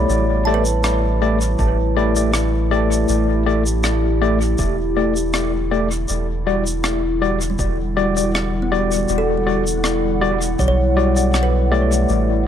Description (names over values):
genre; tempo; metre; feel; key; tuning
ambient dub; 80 BPM; 4/4; swing 53% on 16ths; E dorian; A4 = 441 Hz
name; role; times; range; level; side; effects
warbly tape-like pad; sustained chords; 0.0-12.5 s; D3 to F#5; -24 LUFS; left 3 dB; chorus, built-in reverb
kalimba; arpeggios; 0.0-12.5 s; G3 to B5; -25 LUFS; right 1 dB; dub echo
tine electric piano; stabs; 0.0-12.4 s; G3 to D5; -21 LUFS; left 3 dB; overdrive, fast stereo tremolo, dub echo
soft dub sub bass; bass; 0.0-12.5 s; E1 to B1; -20 LUFS; right 1 dB; none
shaker and rim click; drums; 0.1-12.2 s; none; -26 LUFS; equal; dub echo
electronic kick drum; drums; 1.6-10.8 s; none; -24 LUFS; right 1 dB; none
room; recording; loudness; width
light reverb, small room ambience; echo-heavy mix; -16 LUFS; side -9 dB against mid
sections
0.0-12.5 A section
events
none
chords
0.1 A7sus4; 6.1 Em9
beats
| 0.09 0.84 1.59 2.34 | 3.09 3.84 4.59 5.34 | 6.09 6.84 7.59 8.34 | 9.09 9.84 10.59 11.34 | 12.09